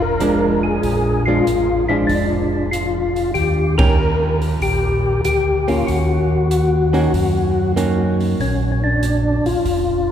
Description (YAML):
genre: soul jazz organ trio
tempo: 95 BPM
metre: 4/4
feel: swing 69% on 8ths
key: Bb mixolydian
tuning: A4 = 440 Hz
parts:
  - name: percussive tonewheel organ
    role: melody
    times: 0.0-10.1 s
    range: Db4 to Bb4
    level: -19 LUFS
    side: left 2 dB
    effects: slow rotary speaker, chorus vibrato
  - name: mellow tonewheel organ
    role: bass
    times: 0.0-10.1 s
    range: F1 to Gb2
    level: -20 LUFS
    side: equal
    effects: chorus vibrato, slow rotary speaker
  - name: archtop guitar, miked and amplified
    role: accompaniment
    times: 0.2-8.4 s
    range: Eb3 to G4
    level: -22 LUFS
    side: right 2 dB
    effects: none
  - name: open jazz drum kit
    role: drums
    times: 0.2-9.9 s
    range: hi-hat, kick drum, ride cymbal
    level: -26 LUFS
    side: right 1 dB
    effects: none
room: wet cathedral reverb, RT60 5.8 s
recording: recorded in a church or concert hall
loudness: -15 LUFS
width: side -9 dB against mid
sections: 0.0-10.1 A section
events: band accent 3.7-4.0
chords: 0.0 Bb7; 3.4 Eb7; 5.9 Ebm7; 8.4 Bb